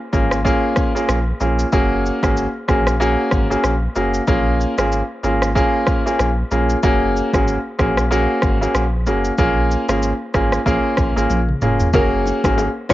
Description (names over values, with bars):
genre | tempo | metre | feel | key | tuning
afrobeats | 94 BPM | 4/4 | swing 58% on 16ths | F# major | A4 = 440 Hz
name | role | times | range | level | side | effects
clear concert grand piano | accompaniment | 0.1-12.9 s | A#3 to G#4 | -18 LUFS | equal | cassette tape
warm sub bass | bass | 0.1-12.9 s | E#1 to A#1 | -21 LUFS | equal | none
afro-pop drum kit | drums | 0.1-12.9 s | hi-hat, kick drum, rim click, shaker, toms | -21 LUFS | equal | cassette tape
congas and bongos | percussion | 11.9-12.9 s | none | -26 LUFS | left 5 dB | none
glassy wavetable pluck | melody | 12.0-12.9 s | A#4 to C#5 | -22 LUFS | equal | chorus, cassette tape
room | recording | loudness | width
light reverb | home recording on cassette, nothing above 7.6 kHz | -15 LUFS | side -16 dB against mid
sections
0.0-11.9 A section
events
drum fill 11.3-11.9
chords
0.0 A#m7; 1.7 F#add9; 4.3 A#m7; 6.8 F#add9; 9.4 A#m7; 11.9 F#add9